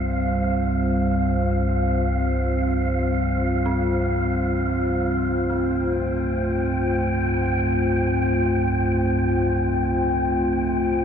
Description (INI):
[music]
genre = dark ambient drone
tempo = free time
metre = none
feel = none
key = unclear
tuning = A4 = 441 Hz
[part]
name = dark analog pad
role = sustained chords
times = 0.0-11.0 s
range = G3 to C5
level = -23 LUFS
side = left 1 dB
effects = chorus
[part]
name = dark detuned synth bell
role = arpeggios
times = 0.0-11.0 s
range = C4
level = -38 LUFS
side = right 1 dB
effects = none
[part]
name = deep rumbling drone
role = drone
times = 0.0-11.0 s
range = C2 to G2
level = -25 LUFS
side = equal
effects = built-in reverb
[part]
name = wind-like tuned noise texture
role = texture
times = 0.0-11.0 s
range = F5 to G5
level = -27 LUFS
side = right 1 dB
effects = built-in reverb
[sound]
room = wet huge ambient reverb, RT60 8.0 s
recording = in a vast, echoing space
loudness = -20 LUFS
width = side -8 dB against mid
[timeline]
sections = 0.0-11.0 A section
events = filter sweep on synth drone 0.0-11.0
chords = 0.0 C5